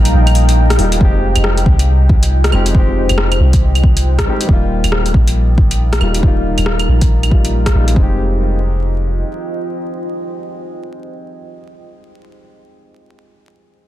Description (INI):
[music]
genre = future garage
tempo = 138 BPM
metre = 4/4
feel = swing 62% on 16ths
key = F minor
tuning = A4 = 438 Hz
[part]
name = dark upright piano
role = accompaniment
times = 0.0-13.9 s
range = G3 to G4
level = -22 LUFS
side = left 3 dB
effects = sidechain pumping, digital delay
[part]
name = deep dark ambient pad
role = sustained chords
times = 0.0-11.8 s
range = Eb4 to Bb5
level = -24 LUFS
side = right 1 dB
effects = chorus, built-in reverb, sidechain pumping
[part]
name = soft 808-style bass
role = bass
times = 0.0-9.2 s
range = Eb1 to C2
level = -13 LUFS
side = equal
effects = sidechain pumping
[part]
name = deep house drum kit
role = drums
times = 0.1-7.9 s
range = claves, hi-hat, rim click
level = -20 LUFS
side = equal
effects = overdrive
[part]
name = electronic kick drum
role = drums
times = 1.0-8.1 s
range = none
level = -13 LUFS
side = equal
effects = overdrive
[sound]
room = little or no reverb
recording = dense, heavily limited modern master, vinyl crackle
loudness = -11 LUFS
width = side -14 dB against mid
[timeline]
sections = 0.0-1.0 A section; 1.0-8.0 B section; 8.0-11.4 C section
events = kick drops out 0.6-1.0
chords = 0.0 Ebadd9; 1.0 Fm7; 4.5 Ebadd9; 8.0 Fm7